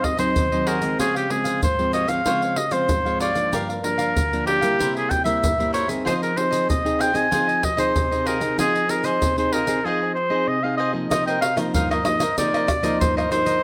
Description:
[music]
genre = samba and choro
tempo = 95 BPM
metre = 4/4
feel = straight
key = F minor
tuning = A4 = 440 Hz
[part]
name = warm oboe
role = melody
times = 0.0-13.6 s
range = G4 to Ab5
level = -24 LUFS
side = equal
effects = plate reverb
[part]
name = cavaquinho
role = accompaniment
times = 0.0-13.6 s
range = Eb4 to F5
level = -32 LUFS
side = equal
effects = none
[part]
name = nylon-string guitar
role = accompaniment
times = 0.0-13.6 s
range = G2 to Ab4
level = -28 LUFS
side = equal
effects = none
[part]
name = surdo, pandeiro, tube shaker and tamborim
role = percussion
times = 0.0-13.6 s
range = none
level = -28 LUFS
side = equal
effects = none
[sound]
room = moderate studio reverb, RT60 0.8 s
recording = none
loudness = -21 LUFS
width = mono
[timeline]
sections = 0.0-11.1 A section; 11.1-13.6 B section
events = none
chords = 0.0 Ab7; 1.0 Dbmaj7; 3.5 Gm7; 4.8 C7; 6.1 Fm7; 11.1 Cm11

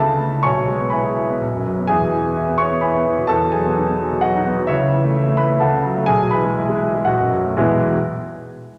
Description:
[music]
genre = classical, virtuoso piano study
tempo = 113-131 BPM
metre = 3/4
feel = rubato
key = E major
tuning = A4 = 440 Hz
[part]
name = clear grand piano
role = solo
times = 0.0-8.0 s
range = E1 to C#6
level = -18 LUFS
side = equal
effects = none
[sound]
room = wet concert hall reverb, RT60 1.9 s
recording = none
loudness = -18 LUFS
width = mono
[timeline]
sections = 0.0-7.6 A section; 7.6-8.8 B section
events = slowing down 4.0-7.6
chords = 0.4 E/B; 1.4 B5; 1.9 E; 3.3 B/E; 4.7 A/C#; 5.6 F#m/C#; 6.1 E/B; 7.1 B7; 7.6 E

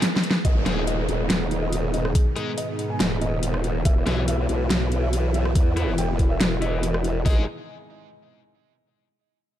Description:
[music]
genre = heavy wobble dubstep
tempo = 141 BPM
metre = 4/4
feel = half-time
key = G# minor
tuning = A4 = 443 Hz
[part]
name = supersaw pad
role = sustained chords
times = 0.0-7.5 s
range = G#2 to G#4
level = -30 LUFS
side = right 1 dB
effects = phaser, sidechain pumping
[part]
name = dubstep drum kit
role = drums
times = 0.0-7.1 s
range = hi-hat, rim click, snare drum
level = -25 LUFS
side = equal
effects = none
[part]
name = felt-muted upright piano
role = melody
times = 0.4-7.4 s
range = E4 to G#5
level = -33 LUFS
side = equal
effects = ping-pong delay
[part]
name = formant-sweep wobble bass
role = bass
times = 0.4-7.5 s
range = D#1 to E2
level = -24 LUFS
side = equal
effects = chorus, overdrive
[part]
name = dubstep drum kit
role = drums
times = 0.4-7.4 s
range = hi-hat, kick drum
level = -19 LUFS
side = equal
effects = overdrive
[part]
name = downlifter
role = sound effects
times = 0.4-3.9 s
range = none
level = -33 LUFS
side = right 1 dB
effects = none
[part]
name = high-gain distorted guitar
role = stabs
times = 0.7-7.4 s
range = E3 to G#4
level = -34 LUFS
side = left 3 dB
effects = distortion, low-pass filter, ping-pong delay
[sound]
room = digital ambience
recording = dark, warm production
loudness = -20 LUFS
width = side -12 dB against mid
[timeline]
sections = 0.4-7.3 A section; 7.3-9.0 B section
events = break 0.0-0.4; drum fill 0.0-0.4; filter sweep on distorted electric guitar 0.4-7.3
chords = 0.4 G#m; 3.9 E; 7.3 G#

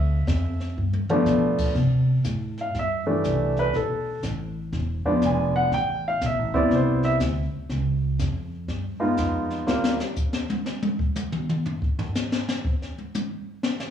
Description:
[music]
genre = jazz piano trio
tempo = 121 BPM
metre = 4/4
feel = swing 66% on 8ths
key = C major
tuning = A4 = 436 Hz
[part]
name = warm grand piano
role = melody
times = 0.0-10.0 s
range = E3 to G#5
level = -23 LUFS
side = equal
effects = slapback echo
[part]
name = upright bass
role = bass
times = 0.0-10.0 s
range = E1 to C3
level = -25 LUFS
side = equal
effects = none
[part]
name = jazz brush drum kit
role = drums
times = 0.3-13.9 s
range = brushed snare drum, crash cymbal, hi-hat, kick drum, snare drum, toms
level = -28 LUFS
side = left 1 dB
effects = none
[sound]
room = light reverb, small room ambience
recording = live gig heard through the venue's PA, club reverb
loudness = -22 LUFS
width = side -9 dB against mid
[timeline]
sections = 0.0-1.8 A section; 1.8-13.9 B section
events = drum fill 0.8-1.3; grand piano solo 1.8-13.9; drum solo 9.7-13.9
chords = 0.0 Dm; 0.8 G7; 1.8 C6; 3.7 Asus2; 4.7 E7b9; 5.7 Am7; 7.7 Db9; 9.7 N.C.

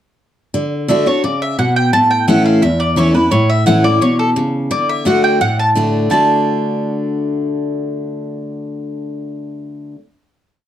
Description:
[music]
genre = bluegrass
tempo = 172 BPM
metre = 4/4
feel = straight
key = D major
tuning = A4 = 439 Hz
[part]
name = picked steel-string acoustic guitar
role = accompaniment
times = 0.5-10.0 s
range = E2 to F#4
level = -15 LUFS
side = equal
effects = none
[part]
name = mandolin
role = melody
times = 0.9-9.9 s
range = A4 to A5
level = -16 LUFS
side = right 1 dB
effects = plate reverb
[sound]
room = moderate studio reverb, RT60 0.5 s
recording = dark, warm production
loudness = -12 LUFS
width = side -10 dB against mid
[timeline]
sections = 0.5-6.1 A section; 6.1-8.9 final chord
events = none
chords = 0.5 D; 1.9 A; 4.7 D

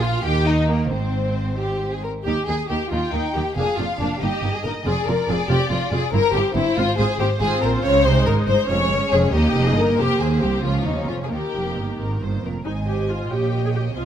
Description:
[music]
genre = quick classical-period movement for string orchestra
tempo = 92 BPM (dotted quarters)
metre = 6/8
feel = rubato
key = Eb major, Ab major from 7.4 s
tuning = A4 = 440 Hz
[part]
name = warm studio violin section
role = melody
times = 0.0-14.1 s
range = Bb4 to Ab5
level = -30 LUFS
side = left 4 dB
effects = none
[part]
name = warm studio violin section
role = second line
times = 0.0-14.1 s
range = Bb3 to Eb5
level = -22 LUFS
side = left 2 dB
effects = none
[part]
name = warm studio viola section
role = accompaniment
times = 0.0-14.1 s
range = Eb3 to Ab4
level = -27 LUFS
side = right 1 dB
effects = none
[part]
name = rich studio cello section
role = bass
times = 0.0-14.1 s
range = C2 to Eb3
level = -26 LUFS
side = right 2 dB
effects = none
[part]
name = warm studio double bass section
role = bass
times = 0.0-14.1 s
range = F1 to Eb2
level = -24 LUFS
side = right 2 dB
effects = none
[sound]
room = light reverb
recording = close, detailed microphones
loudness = -18 LUFS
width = side -9 dB against mid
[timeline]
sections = 0.0-2.3 A section; 2.3-12.7 B section; 12.7-14.1 A section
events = none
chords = 0.2 Eb; 0.9 Ab; 2.3 Eb; 3.6 Bb/F; 4.2 Eb/G; 4.9 F5; 6.1 C/G; 6.8 Fm/Ab; 7.4 Ab; 8.7 Db/F; 9.3 Eb; 10.0 N.C.; 10.6 Dbadd9; 11.3 Eb; 12.7 Ab; 13.3 Eb7/Bb

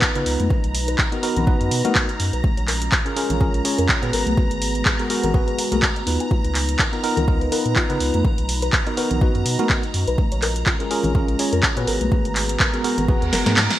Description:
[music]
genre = deep house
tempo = 124 BPM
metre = 4/4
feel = swing 56% on 16ths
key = G# dorian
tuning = A4 = 440 Hz
[part]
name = dark analog pad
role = sustained chords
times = 0.0-13.8 s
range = G#3 to A#5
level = -30 LUFS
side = equal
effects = chorus, sidechain pumping
[part]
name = soft round pluck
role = arpeggios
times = 0.0-13.6 s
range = E#4 to G#5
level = -31 LUFS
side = left 3 dB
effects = chorus, sidechain pumping, digital delay
[part]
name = tine electric piano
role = stabs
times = 0.0-13.6 s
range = B3 to C#5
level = -24 LUFS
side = equal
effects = medium stereo tremolo, vintage 12-bit sampler grit, sidechain pumping, digital delay
[part]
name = electronic kick drum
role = drums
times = 0.0-13.2 s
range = none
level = -21 LUFS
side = equal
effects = overdrive, studio reverb
[part]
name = punchy analog drum machine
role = drums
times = 0.0-13.8 s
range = handclaps, hi-hat, snare drum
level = -22 LUFS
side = equal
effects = studio reverb
[part]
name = deep dark ambient pad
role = texture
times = 0.6-13.8 s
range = C#4 to A#5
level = -41 LUFS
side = right 2 dB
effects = none
[part]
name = string machine, violins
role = texture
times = 0.0-13.8 s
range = A#5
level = -33 LUFS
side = right 1 dB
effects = ensemble chorus, sidechain pumping
[part]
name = warm sub bass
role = bass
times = 0.2-13.7 s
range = F#1 to C#3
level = -24 LUFS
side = equal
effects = sidechain pumping
[part]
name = congas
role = percussion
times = 0.4-13.5 s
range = none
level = -29 LUFS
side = left 3 dB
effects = none
[part]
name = reverse cymbal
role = sound effects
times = 13.2-13.8 s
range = none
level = -26 LUFS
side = right 4 dB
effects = none
[sound]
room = light reverb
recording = bright 1980s-style digital production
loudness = -18 LUFS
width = side -13 dB against mid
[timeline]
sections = 0.0-13.8 A section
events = reverse cymbal 13.2-13.8; drum fill 13.3-13.8; kick drops out 13.6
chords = 0.0 C#13; 0.5 Bmaj7; 2.4 A#m7; 4.1 G#m9; 6.3 C#13; 8.2 Bmaj7; 10.2 A#m7; 11.9 G#m9

